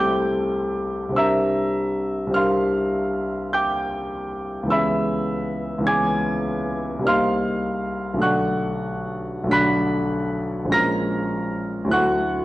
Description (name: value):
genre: classical, impressionist solo piano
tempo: 51 BPM (dotted quarters)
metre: 9/8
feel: rubato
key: unclear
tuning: A4 = 441 Hz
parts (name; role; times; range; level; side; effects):
- warm grand piano; solo; 0.0-12.4 s; Bb1 to B6; -20 LUFS; equal; none
room: moderate scoring stage reverb, RT60 1.6 s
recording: worn, warbling old tape, cassette tape, warbly pitch drift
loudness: -20 LUFS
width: side -17 dB against mid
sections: 0.0-12.4 A section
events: none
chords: 0.0 C6; 1.2 Bbadd9/C; 4.7 C#m7; 7.1 Cm7; 8.2 Bm7; 10.7 Bbm7; 11.9 Dadd9